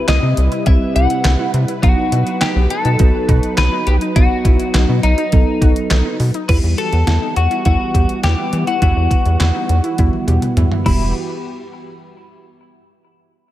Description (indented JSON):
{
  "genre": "synth-pop",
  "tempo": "103 BPM",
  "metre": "4/4",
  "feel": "straight",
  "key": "E harmonic minor",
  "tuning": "A4 = 441 Hz",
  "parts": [
    { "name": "twelve-string electric guitar", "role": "melody", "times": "0.0-11.1 s", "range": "D#4 to F#5", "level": "-21 LUFS", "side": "left 3 dB", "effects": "analog chorus, low-pass filter, tape echo" },
    { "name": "muted felt-like synth keys", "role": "accompaniment", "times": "0.0-11.1 s", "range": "F#3 to A4", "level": "-24 LUFS", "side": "right 4 dB", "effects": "chorus, low-pass filter" },
    { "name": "warm analog pad", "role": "sustained chords", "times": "0.0-11.1 s", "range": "C3 to F#5", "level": "-25 LUFS", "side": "equal", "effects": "chorus, low-pass filter" },
    { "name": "warbly dusty pluck", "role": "arpeggios", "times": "0.1-11.1 s", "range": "B3 to G4", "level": "-27 LUFS", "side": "right 1 dB", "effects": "chorus, phaser, low-pass filter, tape echo" },
    { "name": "rubbery square bass", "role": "bass", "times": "0.1-11.1 s", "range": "E1 to E3", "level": "-15 LUFS", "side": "equal", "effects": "none" },
    { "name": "detuned 8-bit digital drum machine", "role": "drums", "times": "0.1-11.0 s", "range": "crash cymbal, handclaps, hi-hat, kick drum, snare drum, toms", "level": "-17 LUFS", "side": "equal", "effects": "overdrive, gated reverb" }
  ],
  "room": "little or no reverb",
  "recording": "none",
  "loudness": "-13 LUFS",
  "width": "side -14 dB against mid",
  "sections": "0.0-6.5 A section; 6.5-11.2 B section; 11.2-13.5 C section",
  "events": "filter sweep 6.5-11.2; drum fill 10.0-11.2",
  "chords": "0.0 Cmaj7; 1.8 B; 6.5 Emadd9; 11.2 N.C.",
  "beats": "0.08 0.67 1.25 | 1.83 2.41 3.00 3.58 | 4.16 4.74 5.33 5.91 | 6.49 7.07 7.66 8.24 | 8.82 9.40 9.98 10.57"
}